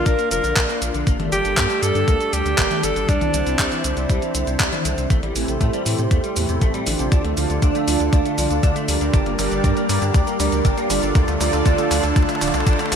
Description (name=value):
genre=italo disco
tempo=119 BPM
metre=4/4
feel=straight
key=D minor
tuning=A4 = 440 Hz
part: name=breathy alto saxophone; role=melody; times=0.0-4.6 s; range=D4 to Bb4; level=-23 LUFS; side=right 1 dB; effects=digital delay
part: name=lush unison pad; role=sustained chords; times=0.0-13.0 s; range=D3 to D5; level=-24 LUFS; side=right 1 dB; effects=chorus
part: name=direct-recorded clean electric guitar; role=arpeggios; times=0.0-13.0 s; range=C3 to D4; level=-28 LUFS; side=left 2 dB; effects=ensemble chorus, ping-pong delay
part: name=round analog bass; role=bass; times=0.0-13.0 s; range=D1 to A2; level=-24 LUFS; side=equal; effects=none
part: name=clean 12-bit digital drum machine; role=drums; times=0.1-13.0 s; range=cabasa, handclaps, hi-hat, toms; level=-25 LUFS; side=left 1 dB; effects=high-pass filter on hats, high-pass filter on perc, high-pass filter on toms, high-pass filter on snare, high-pass filter on room, gated reverb
part: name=electronic kick drum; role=drums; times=0.1-12.8 s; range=none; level=-18 LUFS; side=equal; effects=none
part: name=mellow synth brass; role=stabs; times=5.4-13.0 s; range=A2 to D5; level=-24 LUFS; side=right 2 dB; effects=chorus, vintage 12-bit sampler grit, ping-pong delay
room=moderate lush hall reverb, RT60 2.1 s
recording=bright 1980s-style digital production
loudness=-17 LUFS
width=side -7 dB against mid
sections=0.0-5.1 A section; 5.1-13.0 B section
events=drum fill 5.1-13.0; filter sweep on analog synth pad 5.1-13.0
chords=0.0 Bb; 1.1 Gmadd9; 3.1 Cadd9; 5.1 Am7; 7.1 Dm; 9.1 Gm; 11.2 Dm